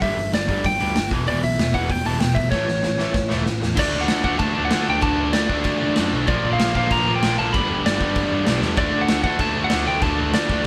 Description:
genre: punk rock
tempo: 192 BPM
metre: 4/4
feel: straight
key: D major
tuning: A4 = 440 Hz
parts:
  - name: lightly driven lead guitar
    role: melody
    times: 0.0-10.7 s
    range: C#5 to B5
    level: -26 LUFS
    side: equal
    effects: none
  - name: distorted electric guitar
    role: riff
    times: 0.0-10.7 s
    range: E2 to D4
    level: -30 LUFS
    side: equal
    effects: distortion
  - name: overdriven semi-hollow guitar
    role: riff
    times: 0.0-10.7 s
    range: E2 to D4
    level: -29 LUFS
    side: equal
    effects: none
  - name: picked electric bass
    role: bass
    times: 0.0-10.7 s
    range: E1 to D3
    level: -29 LUFS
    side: equal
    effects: none
  - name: raw garage drum kit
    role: drums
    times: 0.0-10.7 s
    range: crash cymbal, hi-hat, kick drum, snare drum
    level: -26 LUFS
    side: equal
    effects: none
  - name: heavy high-gain guitar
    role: riff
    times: 3.8-10.7 s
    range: G2 to D4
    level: -30 LUFS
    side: equal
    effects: distortion
room: light reverb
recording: band playing live in one room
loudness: -20 LUFS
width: mono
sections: 0.0-3.8 A section; 3.8-10.7 B section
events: drum fill 2.5-3.8, 8.6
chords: 0.0 G5; 1.1 Em; 2.5 A; 3.8 D; 6.3 Bb; 7.5 G; 8.8 D

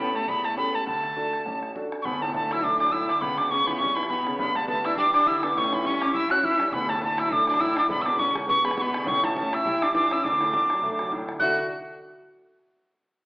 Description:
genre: celtic folk, Celtic reel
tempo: 205 BPM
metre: 4/4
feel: swing 56% on 8ths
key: D major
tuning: A4 = 445 Hz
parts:
  - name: wooden whistle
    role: melody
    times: 0.0-11.6 s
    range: A5 to F#6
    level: -23 LUFS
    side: equal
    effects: none
  - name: warm cello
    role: second line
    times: 0.0-11.6 s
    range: A3 to F#4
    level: -31 LUFS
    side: left 1 dB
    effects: none
  - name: warm upright piano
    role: accompaniment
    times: 0.0-11.6 s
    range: D1 to E5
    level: -30 LUFS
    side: equal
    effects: none
  - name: bodhran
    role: percussion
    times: 0.1-11.6 s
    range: none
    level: -37 LUFS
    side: equal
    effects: none
room: wet recital hall reverb, RT60 1.4 s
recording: recorded in a church or concert hall, AM radio sound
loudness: -22 LUFS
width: side -24 dB against mid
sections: 0.0-2.0 A section; 2.0-11.4 B section; 11.4-12.6 C section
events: none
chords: 0.0 A7; 0.9 D; 3.2 C#m7b5; 4.4 G; 5.6 A7; 6.7 D; 7.9 E7; 9.1 A7; 10.2 D; 11.4 Dadd9

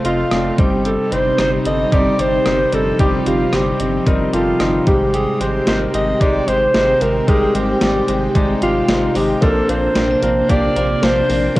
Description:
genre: 1980s-style pop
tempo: 112 BPM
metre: 4/4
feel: swing 55% on 16ths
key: unclear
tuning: A4 = 440 Hz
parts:
  - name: clear baby grand piano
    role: accompaniment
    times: 0.0-11.6 s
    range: G2 to Eb5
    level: -21 LUFS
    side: left 1 dB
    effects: cassette tape
  - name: string machine, violins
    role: sustained chords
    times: 0.0-11.6 s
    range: C3 to G4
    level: -22 LUFS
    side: equal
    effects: ensemble chorus, cassette tape
  - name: direct-recorded clean electric guitar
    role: riff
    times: 0.0-11.6 s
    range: F3 to Bb4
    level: -26 LUFS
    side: right 2 dB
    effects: wide subtle chorus, cassette tape
  - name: rubbery square bass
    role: bass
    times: 0.0-11.6 s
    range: F1 to Bb1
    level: -24 LUFS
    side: equal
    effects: transformer saturation
  - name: clean 12-bit digital drum machine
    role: drums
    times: 0.0-11.6 s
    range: hi-hat, kick drum, rim click, snare drum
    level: -19 LUFS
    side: equal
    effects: cassette tape
  - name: clear alto saxophone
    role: melody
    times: 0.1-11.6 s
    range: F4 to Eb5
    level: -18 LUFS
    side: equal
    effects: analog delay
room: wet spring reverb, RT60 1.8 s, digital ambience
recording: home recording on cassette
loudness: -13 LUFS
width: side -17 dB against mid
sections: 0.0-11.6 A section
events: none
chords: 0.0 F; 0.6 Cm/G; 4.9 Abmaj7; 9.4 Bbadd9

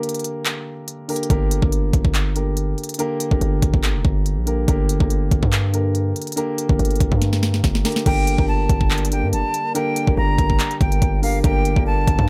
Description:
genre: hip hop, trap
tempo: 142 BPM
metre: 4/4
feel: half-time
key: G minor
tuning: A4 = 441 Hz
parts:
  - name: dark grand piano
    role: accompaniment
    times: 0.0-12.3 s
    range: D3 to Bb4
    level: -27 LUFS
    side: equal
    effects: none
  - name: trap drum kit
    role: drums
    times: 0.0-12.3 s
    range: crash cymbal, handclaps, hi-hat, kick drum, snare drum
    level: -23 LUFS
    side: equal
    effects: overdrive
  - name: distorted 808-style bass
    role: bass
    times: 1.3-12.3 s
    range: F1 to G2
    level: -22 LUFS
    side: equal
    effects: distortion
  - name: jazz flute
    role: melody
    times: 8.1-12.3 s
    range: F5 to Bb5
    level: -26 LUFS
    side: equal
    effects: none
  - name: warm French horn section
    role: sustained chords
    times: 8.1-12.3 s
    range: G3 to Bb4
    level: -34 LUFS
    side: equal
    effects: none
room: little or no reverb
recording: none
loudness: -20 LUFS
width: mono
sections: 0.0-8.1 A section; 8.1-12.3 B section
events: break 0.0-1.3; drum fill 7.2-8.1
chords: 0.0 Gm

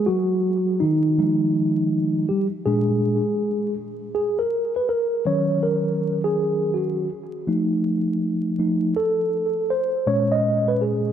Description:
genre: hip hop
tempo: 81 BPM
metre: 4/4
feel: swing 65% on 16ths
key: Eb minor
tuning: A4 = 440 Hz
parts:
  - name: mellow tine electric piano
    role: solo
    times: 0.0-11.1 s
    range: Bb2 to Eb5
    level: -20 LUFS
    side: equal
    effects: fast stereo tremolo, tape echo
room: moderate plate reverb, RT60 3.6 s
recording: dark, warm production, vinyl crackle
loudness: -20 LUFS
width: side -9 dB against mid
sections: 0.0-4.2 A section; 4.2-11.1 B section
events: tine electric piano solo 0.0-4.2, 4.2-11.1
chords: 0.0 Emaj7sus2 (rootless); 1.2 Fm9/Eb; 2.7 Bb7; 4.2 Ebm7; 7.1 F7; 10.1 Bbm7

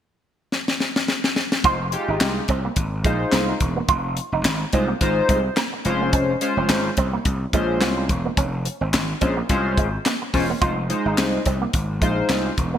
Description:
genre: early-eighties boogie funk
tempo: 107 BPM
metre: 4/4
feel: swing 56% on 16ths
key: F minor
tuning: A4 = 440 Hz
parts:
  - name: tight funk drum kit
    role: drums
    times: 0.5-12.7 s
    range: handclaps, hi-hat, kick drum, snare drum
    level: -22 LUFS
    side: left 1 dB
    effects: none
  - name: chorused polysynth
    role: accompaniment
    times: 1.6-12.5 s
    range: Ab3 to C5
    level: -24 LUFS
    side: left 1 dB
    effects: none
  - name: electric guitar with an envelope filter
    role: riff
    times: 1.6-12.8 s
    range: Ab3 to F4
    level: -27 LUFS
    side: right 6 dB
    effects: ensemble chorus
  - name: gritty slap bass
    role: bass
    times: 1.6-12.8 s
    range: E1 to C2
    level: -24 LUFS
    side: equal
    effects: overdrive
room: moderate lush hall reverb, RT60 1.7 s, studio reverb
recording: bright 1980s-style digital production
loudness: -19 LUFS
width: side -10 dB against mid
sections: 0.0-1.6 A section; 1.6-12.8 B section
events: drum fill 0.5-1.6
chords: 0.0 N.C.; 1.6 Fm7; 5.9 Dbmaj7; 10.6 Fm7

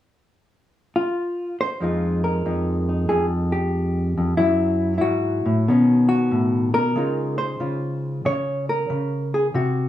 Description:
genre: solo jazz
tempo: 93 BPM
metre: 4/4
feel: swing 67% on 8ths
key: F minor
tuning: A4 = 440 Hz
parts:
  - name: hollow-body jazz guitar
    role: solo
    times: 1.0-9.9 s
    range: F2 to Db5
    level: -19 LUFS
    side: left 1 dB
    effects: none
room: moderate studio reverb, RT60 0.5 s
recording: studio reverb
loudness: -19 LUFS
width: side -12 dB against mid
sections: 0.0-1.8 A section; 1.8-9.9 B section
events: none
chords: 0.0 N.C.; 1.8 Fm9; 4.4 Gbm7; 5.7 B9; 7.0 Dbmaj13

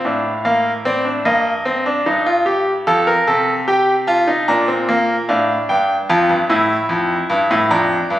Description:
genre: classical, baroque-style 3-part fugue for grand piano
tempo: 74 BPM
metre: 4/4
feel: straight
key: unclear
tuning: A4 = 438 Hz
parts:
  - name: bright concert grand piano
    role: solo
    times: 0.0-8.2 s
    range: F2 to Bb5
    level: -14 LUFS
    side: equal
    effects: none
room: moderate recital hall reverb, RT60 1.5 s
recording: recorded on a phone in the room, studio reverb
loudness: -14 LUFS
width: side -14 dB against mid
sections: 0.0-8.2 A section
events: none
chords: 0.0 Bb; 1.3 Cm7/G; 2.9 F; 4.5 Bb; 6.1 F

